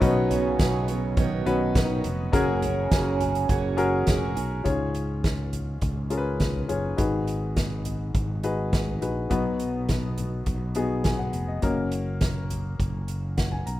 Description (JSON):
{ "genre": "piano-driven pop", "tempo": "103 BPM", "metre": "4/4", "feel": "straight", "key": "F# major", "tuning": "A4 = 441 Hz", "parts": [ { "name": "mellow French horn section", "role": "second line", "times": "0.0-4.3 s", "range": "C#3 to D#4", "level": "-30 LUFS", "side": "right 4 dB", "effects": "none" }, { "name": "warm upright piano", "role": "accompaniment", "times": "0.0-13.8 s", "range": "G#2 to A#5", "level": "-28 LUFS", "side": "left 3 dB", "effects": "none" }, { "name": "picked steel-string acoustic guitar", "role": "riff", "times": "0.0-4.7 s", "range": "B2 to C#5", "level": "-30 LUFS", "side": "right 8 dB", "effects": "none" }, { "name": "sustaining fretless electric bass", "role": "bass", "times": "0.0-13.8 s", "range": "E#1 to C#2", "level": "-29 LUFS", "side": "equal", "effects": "none" }, { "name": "soft-mallet drum kit", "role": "drums", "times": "0.0-13.8 s", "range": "hi-hat, kick drum, snare drum, toms", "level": "-28 LUFS", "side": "equal", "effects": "none" } ], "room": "light reverb", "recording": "rough home demo mix", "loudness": "-23 LUFS", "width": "side -14 dB against mid", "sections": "0.0-4.7 A section; 4.7-13.8 B section", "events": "none", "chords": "0.0 Badd9; 2.3 F#add9; 4.7 C#; 7.0 G#m7; 9.3 B; 11.6 F#" }